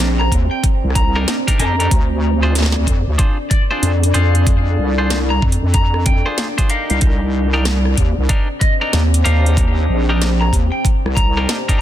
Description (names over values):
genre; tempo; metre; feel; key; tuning
glitch hop; 94 BPM; 4/4; swing 64% on 16ths; C minor; A4 = 440 Hz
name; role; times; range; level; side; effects
clean electric guitar; stabs; 0.0-11.8 s; D4 to C5; -24 LUFS; equal; sidechain pumping, ping-pong delay
wobble bass; bass; 0.0-11.5 s; Bb1 to F2; -16 LUFS; equal; chorus
drum and bass drum kit; drums; 0.0-11.8 s; hi-hat, rim click, snare drum; -23 LUFS; equal; none
downlifter; sound effects; 0.5-1.9 s; none; barely audible; none; none
deep dark ambient pad; texture; 0.0-11.8 s; C4 to D5; -24 LUFS; left 1 dB; chorus, built-in reverb, sidechain pumping
lightly driven lead guitar; melody; 0.2-11.8 s; D5 to Bb5; -24 LUFS; left 1 dB; ping-pong delay
electronic kick drum; drums; 0.3-11.8 s; none; -16 LUFS; equal; none
room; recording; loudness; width
digital ambience; dense, heavily limited modern master; -13 LUFS; side -12 dB against mid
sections
0.0-11.8 A section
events
none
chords
0.0 Cm9; 1.9 Dm7b5; 7.0 Cm9